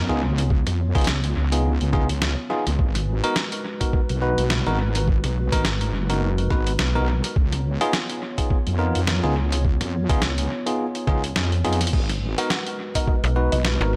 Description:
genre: glitch hop.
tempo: 105 BPM.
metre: 4/4.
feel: swing 57% on 16ths.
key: G# dorian.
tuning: A4 = 441 Hz.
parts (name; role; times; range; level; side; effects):
dark analog pad; sustained chords; 0.0-14.0 s; G#3 to C#5; -35 LUFS; equal; subtle chorus, sidechain pumping.
wobble bass; bass; 0.0-13.8 s; F#1 to E#2; -25 LUFS; equal; chorus, tube saturation.
bell-like tine electric piano; stabs; 0.1-13.9 s; B3 to B4; -29 LUFS; equal; sidechain pumping, analog delay.
boom bap sampler-style drum kit; drums; 0.1-13.9 s; crash cymbal, hi-hat, snare drum; -30 LUFS; equal; studio ambience, analog delay.
electronic kick drum; drums; 0.5-13.2 s; none; -24 LUFS; equal; studio ambience.
woody wave-folded pluck; melody; 12.4-13.7 s; D#5 to F#5; -34 LUFS; equal; lush chorus, analog delay.
slap-like FM bass; bass; 13.2-14.0 s; G#1 to B1; -22 LUFS; equal; none.
room: light reverb.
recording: echo-heavy mix.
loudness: -22 LUFS.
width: mono.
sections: 0.0-14.0 A section.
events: drum fill 11.6.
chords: 0.0 C#7; 2.8 G#m7; 7.4 C#7; 11.9 G#m7.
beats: | 0.50 1.07 1.65 2.22 | 2.79 3.36 3.93 4.50 | 5.08 5.65 6.22 6.79 | 7.36 7.93 8.50 9.07 | 9.65 10.22 10.79 11.36 | 11.93 12.50 13.07 13.65.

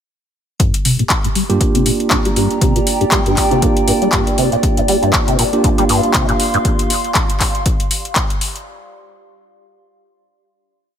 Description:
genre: acid house.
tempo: 119 BPM.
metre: 4/4.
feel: swing 56% on 16ths.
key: G minor pentatonic.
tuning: A4 = 440 Hz.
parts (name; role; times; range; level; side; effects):
deep acid bass; riff; 0.6-6.6 s; G2 to G3; -18 LUFS; equal; ensemble chorus, sidechain pumping, tape echo.
booming analog drum machine; drums; 0.6-8.6 s; handclaps, hi-hat; -18 LUFS; left 1 dB; none.
electronic kick drum; drums; 0.6-8.3 s; none; -18 LUFS; equal; none.
warbly tape-like pad; texture; 1.4-8.7 s; G4 to C6; -22 LUFS; right 1 dB; chorus, built-in reverb, sidechain pumping.
tine electric piano; stabs; 1.5-6.9 s; Bb3 to G4; -20 LUFS; right 4 dB; medium tremolo, tape echo.
room: light reverb.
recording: none.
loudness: -13 LUFS.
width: side -9 dB against mid.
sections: 0.6-8.7 groove.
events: filter sweep on acid bass 0.6-6.6.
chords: 0.6 Gm7.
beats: | 0.60 1.10 1.61 2.11 | 2.62 3.12 3.62 4.13 | 4.63 5.14 5.64 6.14 | 6.65 7.15 7.66 8.16.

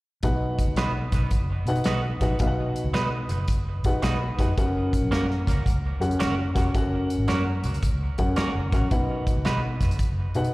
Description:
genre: uptempo 1960s-style soul.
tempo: 111 BPM.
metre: 4/4.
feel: swing 66% on 8ths.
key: unclear.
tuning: A4 = 441 Hz.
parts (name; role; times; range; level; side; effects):
dark upright piano; accompaniment; 0.2-10.5 s; B2 to B5; -28 LUFS; left 2 dB; slapback echo.
vintage muted fingered electric bass; bass; 0.2-10.5 s; E#1 to B2; -26 LUFS; equal; none.
natural country drum kit; drums; 0.2-10.5 s; hi-hat, kick drum, snare drum; -26 LUFS; equal; none.
electric guitar through a small old amp; stabs; 0.8-9.6 s; A#3 to B4; -31 LUFS; right 3 dB; spring reverb, tape echo, slapback echo.
room: light reverb.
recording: live gig heard through the venue's PA, recital hall reverb.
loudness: -22 LUFS.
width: side -20 dB against mid.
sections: 0.2-10.5 A section.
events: upright piano fill 3.8-4.6.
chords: 0.2 B; 4.6 F#; 8.9 B.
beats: | 0.23 0.78 1.32 1.86 | 2.40 2.94 3.49 4.03 | 4.57 5.12 5.66 6.20 | 6.74 7.28 7.83 8.37 | 8.91 9.45 9.99 10.54.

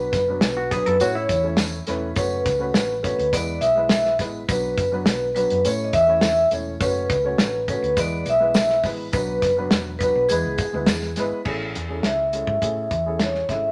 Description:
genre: uptempo 1960s-style soul.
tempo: 103 BPM.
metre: 4/4.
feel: straight.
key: A major.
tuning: A4 = 439 Hz.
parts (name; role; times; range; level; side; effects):
vibraphone with medium mallets; melody; 0.0-13.7 s; G#4 to E5; -24 LUFS; equal; none.
warm upright piano; accompaniment; 0.0-13.7 s; F#3 to C#5; -31 LUFS; equal; none.
hollow-body short-scale fingered electric bass; bass; 0.0-13.7 s; E1 to A2; -33 LUFS; equal; none.
warm soul drum kit; drums; 0.1-13.6 s; crash cymbal, hi-hat, kick drum, snare drum; -25 LUFS; equal; none.
tambourine; percussion; 0.1-11.3 s; none; -41 LUFS; equal; none.
hollow-body jazz guitar; riff; 0.6-2.0 s; E4 to A4; -31 LUFS; equal; none.
room: light reverb.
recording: none.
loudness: -22 LUFS.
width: mono.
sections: 0.0-11.5 A section; 11.5-13.7 B section.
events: none.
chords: 0.0 Bm; 1.0 A; 2.2 F#m; 3.3 E; 4.5 Bm; 5.6 A; 6.8 F#m; 8.0 E; 9.1 Bm; 10.3 E; 11.5 Amaj7.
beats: 0.42 1.00 1.58 | 2.16 2.74 3.32 3.90 | 4.49 5.07 5.65 6.23 | 6.81 7.39 7.97 8.55 | 9.13 9.71 10.29 10.87 | 11.46 12.04 12.62 13.20.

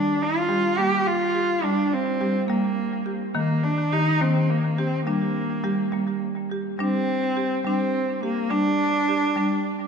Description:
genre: world meditative, meditative tuned percussion.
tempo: 70 BPM (dotted quarters).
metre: 6/8.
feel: straight.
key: G minor.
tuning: A4 = 441 Hz.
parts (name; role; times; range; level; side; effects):
dark cello; melody; 0.0-9.9 s; Bb3 to G4; -24 LUFS; right 1 dB; shimmer reverb, tape echo.
marimba with medium hard mallets; arpeggios; 0.0-9.9 s; Eb3 to G4; -24 LUFS; equal; shimmer reverb, tape echo.
room: wet echo chamber reverb, RT60 1.4 s, studio ambience.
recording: none.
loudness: -21 LUFS.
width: side -6 dB against mid.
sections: 0.0-6.8 A section; 6.8-9.9 B section.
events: none.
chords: 0.0 Gm; 3.4 Eb; 5.1 Gm; 6.8 G5.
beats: 0.77 | 1.63 2.49 | 3.35 4.21 | 5.07 5.93 | 6.79 7.65 | 8.51 9.37.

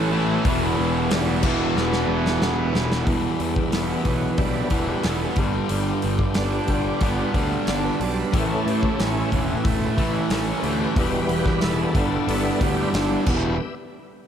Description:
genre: classic rock.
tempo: 91 BPM.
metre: 4/4.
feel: straight.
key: E dorian.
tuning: A4 = 439 Hz.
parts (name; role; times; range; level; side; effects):
bright tonewheel organ; sustained chords; 0.0-13.7 s; D3 to E5; -29 LUFS; left 1 dB; slow rotary speaker, overdrive, chorus vibrato.
biting overdriven guitar; riff; 0.0-3.1 s; E2 to A3; -26 LUFS; right 1 dB; none.
crunchy overdriven guitar; riff; 0.0-13.6 s; E2 to E4; -26 LUFS; right 9 dB; none.
distorted electric guitar; riff; 0.0-13.5 s; E2 to A3; -27 LUFS; left 10 dB; overdrive.
fuzz picked electric bass; bass; 0.0-13.6 s; E1 to A2; -26 LUFS; left 1 dB; overdrive.
big rock drum kit; drums; 0.5-13.4 s; crash cymbal, hi-hat, kick drum, snare drum; -26 LUFS; equal; none.
room: light reverb.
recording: none.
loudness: -20 LUFS.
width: side -8 dB against mid.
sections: 0.0-3.1 A section; 3.1-13.6 B section.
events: drum fill 1.8-3.1, 13.3-13.6; tonewheel organ solo 3.1-13.6.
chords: 0.5 Em; 5.4 G; 8.3 A; 11.0 Em; 12.0 G; 13.3 Em.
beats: | 0.45 1.11 1.77 2.42 | 3.08 3.73 4.39 5.05 | 5.71 6.37 7.03 7.68 | 8.34 9.00 9.66 10.32 | 10.97 11.63 12.29 12.95 | 13.61.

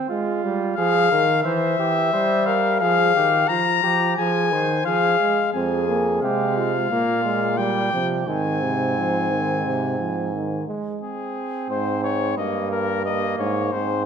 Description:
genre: classical, imitative canzona for brass ensemble.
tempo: 88 BPM.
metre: 4/4.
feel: straight.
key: F minor, Ab major from 5.5 s.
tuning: A4 = 440 Hz.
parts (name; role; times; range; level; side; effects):
mellow flugelhorn; second line; 0.0-14.1 s; Bb3 to C5; -25 LUFS; right 4 dB; none.
clear trombone; accompaniment; 0.1-11.0 s; C3 to C4; -25 LUFS; right 2 dB; none.
clear trumpet; melody; 0.8-14.0 s; Ab4 to Bb5; -22 LUFS; left 7 dB; none.
warm euphonium; bass; 5.5-14.1 s; F2 to C3; -26 LUFS; right 3 dB; none.
room: wet scoring stage reverb, RT60 1.4 s.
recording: none.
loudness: -19 LUFS.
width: side -7 dB against mid.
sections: 0.0-5.5 A section; 5.5-11.0 B section; 11.0-14.1 C section.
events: none.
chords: 0.1 Fm; 1.4 C/E; 2.8 Fm; 6.9 Bb5; 7.6 Fsus24/Bb; 8.3 Ab; 11.0 Ab/C; 12.4 Eb/G.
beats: | 0.10 0.77 1.45 2.13 | 2.81 3.49 4.18 4.86 | 5.54 6.23 6.91 7.59 | 8.27 8.95 9.64 10.33 | 11.01 11.69 12.38 13.05 | 13.73.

